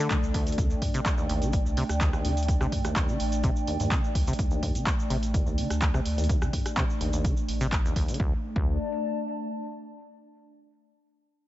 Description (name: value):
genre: acid house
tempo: 126 BPM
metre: 4/4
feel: straight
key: unclear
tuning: A4 = 443 Hz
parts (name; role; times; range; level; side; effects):
- acid bass, saw; riff; 0.0-8.8 s; D2 to D3; -33 LUFS; equal; vintage 12-bit sampler grit, sidechain pumping
- deep mellow chord stab; stabs; 0.0-0.8 s; A3 to A4; -34 LUFS; left 6 dB; chorus, tape echo
- warbly tape-like pad; texture; 0.0-10.1 s; A3 to A5; -33 LUFS; equal; chorus, built-in reverb, sidechain pumping
- electronic kick drum; drums; 0.1-8.7 s; none; -27 LUFS; equal; none
- punchy analog drum machine; drums; 0.1-8.2 s; handclaps, hi-hat, rim click; -34 LUFS; equal; none
- tube shaker; percussion; 0.1-8.2 s; none; -44 LUFS; right 3 dB; none
- warm sub bass; bass; 0.2-8.8 s; A1 to G2; -30 LUFS; equal; sidechain pumping
room: little or no reverb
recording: nothing above 7.8 kHz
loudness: -24 LUFS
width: side -14 dB against mid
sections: 0.0-8.2 A section; 8.2-10.1 B section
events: filter sweep on acid bass 0.0-8.2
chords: 0.0 D5